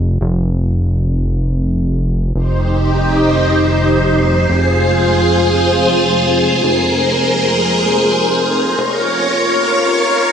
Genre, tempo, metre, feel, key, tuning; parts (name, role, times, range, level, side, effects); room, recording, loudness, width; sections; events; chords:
synthwave; free time; A4 = 441 Hz
chorused synth bass; bass; 0.0-10.3 s; F1; -16 LUFS; equal; tube saturation
string machine, full ensemble; sustained chords; 2.3-10.3 s; Eb4 to Db5; -12 LUFS; equal; ensemble chorus
wet lush hall reverb, RT60 1.9 s, digital ambience; bright 1980s-style digital production, high-pass filter; -12 LUFS; side -8 dB against mid
0.0-2.4 A section; 2.4-10.3 B section
filter sweep 2.4-10.3
0.0 N.C.; 2.4 Eb6/F; 4.5 Fm; 6.6 Abadd9/F; 8.8 Bbm/F